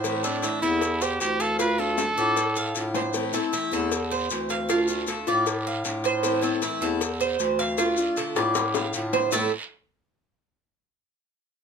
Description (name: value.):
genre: latin, Cuban son and guajira.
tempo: 155 BPM.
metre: 4/4.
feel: straight.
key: A minor.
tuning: A4 = 436 Hz.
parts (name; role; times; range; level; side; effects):
picked acoustic archtop guitar; accompaniment; 0.0-9.5 s; A2 to F4; -30 LUFS; left 4 dB; none.
Cuban tres; arpeggios; 0.0-9.5 s; A3 to F5; -26 LUFS; right 3 dB; none.
clear bass clarinet; bass; 0.0-9.5 s; D2 to A2; -30 LUFS; equal; none.
cowbell and bongos; percussion; 0.0-9.4 s; none; -32 LUFS; left 10 dB; none.
guiro; percussion; 0.0-9.4 s; none; -38 LUFS; right 6 dB; none.
maracas; percussion; 0.0-9.4 s; none; -35 LUFS; left 8 dB; none.
clear trumpet; melody; 0.2-3.0 s; D4 to B4; -26 LUFS; right 2 dB; none.
room: light reverb.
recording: close, detailed microphones.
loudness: -22 LUFS.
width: side -6 dB against mid.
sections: 0.0-3.1 A section; 3.1-9.3 B section; 9.3-10.9 C section.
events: drum fill 2.0-3.1, 8.4-9.3.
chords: 0.0 Am; 1.6 Dm; 3.1 Am; 4.7 Dm; 6.2 Am; 7.8 Dm; 9.3 A5.